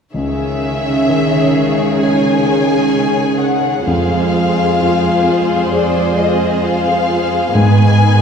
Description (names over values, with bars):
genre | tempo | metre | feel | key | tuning
cinematic, emotional film score for orchestra | 65 BPM | 4/4 | rubato | unclear | A4 = 440 Hz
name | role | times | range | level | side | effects
dark studio violin section | melody | 0.1-8.2 s | D5 to G#5 | -18 LUFS | left 4 dB | none
rich studio violin section | second line | 0.1-8.2 s | G#4 to C#5 | -21 LUFS | left 2 dB | none
rich studio viola section | accompaniment | 0.1-8.2 s | D#3 to F4 | -19 LUFS | equal | none
warm concert grand piano | accompaniment | 0.1-8.2 s | C#2 to C#5 | -18 LUFS | left 1 dB | none
rich studio cello section | bass | 0.1-8.2 s | F2 to C#3 | -17 LUFS | right 3 dB | none
room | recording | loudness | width
wet scoring stage reverb, RT60 1.5 s | heard from further back in the room | -12 LUFS | side -6 dB against mid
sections
0.1-8.2 A section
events
none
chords
0.1 C#madd9; 3.9 Fm; 7.6 G#m